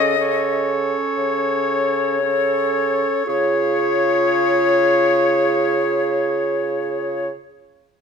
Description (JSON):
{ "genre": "classical, slow romantic movement for wind quintet", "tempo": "26-32 BPM", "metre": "4/4", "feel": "rubato", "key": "Db major", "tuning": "A4 = 440 Hz", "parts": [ { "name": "silver concert flute", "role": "melody", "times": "0.0-7.3 s", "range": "Db5 to Eb5", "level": "-21 LUFS", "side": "left 8 dB", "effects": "none" }, { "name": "clear oboe", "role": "second line", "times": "0.0-7.3 s", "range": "Db5", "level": "-25 LUFS", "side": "left 2 dB", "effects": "none" }, { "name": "clear French horn", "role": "accompaniment", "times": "0.0-7.3 s", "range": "Db4 to F4", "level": "-25 LUFS", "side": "equal", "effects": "none" }, { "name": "clear clarinet", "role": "accompaniment", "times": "0.0-7.3 s", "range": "Ab4 to A4", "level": "-24 LUFS", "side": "right 10 dB", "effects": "none" }, { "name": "warm bassoon", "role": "bass", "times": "0.0-7.3 s", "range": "Db3", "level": "-23 LUFS", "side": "right 4 dB", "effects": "none" } ], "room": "moderate recital hall reverb, RT60 1.4 s", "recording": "none", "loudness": "-16 LUFS", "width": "side -6 dB against mid", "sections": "0.0-3.3 A section; 3.3-8.0 B section", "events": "slowing down 0.0-3.3", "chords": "0.0 Gbm/Db (rootless); 3.3 Db", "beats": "1.17 | 3.28 5.22 7.17" }